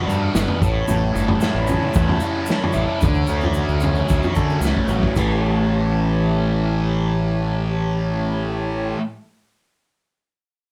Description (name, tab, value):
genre	psychedelic rock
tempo	112 BPM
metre	4/4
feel	straight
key	A mixolydian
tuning	A4 = 440 Hz
part	pedal harmonium	sustained chords	0.0-9.0 s	F#4 to B5	-30 LUFS	equal	none
part	thick fuzz guitar	riff	0.0-9.0 s	A2 to F#4	-24 LUFS	equal	distortion, phaser
part	growling picked electric bass	bass	0.1-8.9 s	G1 to D3	-25 LUFS	equal	overdrive
part	tube shaker	percussion	0.1-5.4 s	none	-42 LUFS	equal	none
part	vintage drum kit	drums	0.3-5.3 s	crash cymbal, kick drum, snare drum, toms	-24 LUFS	equal	none
room	wet studio reverb, RT60 0.5 s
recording	band playing live in one room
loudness	-20 LUFS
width	mono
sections	0.0-5.2 A section; 5.2-9.4 B section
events	drum fill 4.6-5.2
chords	0.0 Gmaj7; 0.6 A7; 3.0 Dmaj7; 5.2 A7